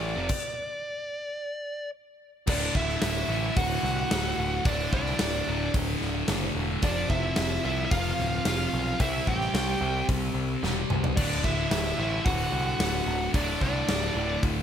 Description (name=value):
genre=hard rock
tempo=110 BPM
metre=4/4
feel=straight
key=unclear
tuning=A4 = 438 Hz
part: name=bluesy overdriven lead guitar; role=melody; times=0.0-14.4 s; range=D5 to G5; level=-32 LUFS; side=equal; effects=distortion, tape echo
part: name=overdriven electric guitar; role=riff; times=0.0-14.6 s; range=D2 to C4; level=-33 LUFS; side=equal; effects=none
part: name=sludgy distorted guitar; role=riff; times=0.0-14.6 s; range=D2 to C4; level=-33 LUFS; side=equal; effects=overdrive
part: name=growling picked electric bass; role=bass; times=0.0-14.6 s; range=D1 to C2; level=-31 LUFS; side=equal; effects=overdrive
part: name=big rock drum kit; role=drums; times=0.3-14.6 s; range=crash cymbal, hi-hat, kick drum, snare drum, toms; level=-30 LUFS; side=equal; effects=none
part: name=smooth overdriven lead guitar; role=second line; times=2.5-14.4 s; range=D4 to G4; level=-35 LUFS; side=right 3 dB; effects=none
room=light reverb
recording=none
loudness=-25 LUFS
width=side -9 dB against mid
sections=0.0-2.5 A section; 2.5-14.6 B section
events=stop 0.3-2.5; drum fill 10.6-11.2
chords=0.0 D5; 1.3 N.C.; 2.5 D; 6.8 F5; 9.0 C; 11.2 D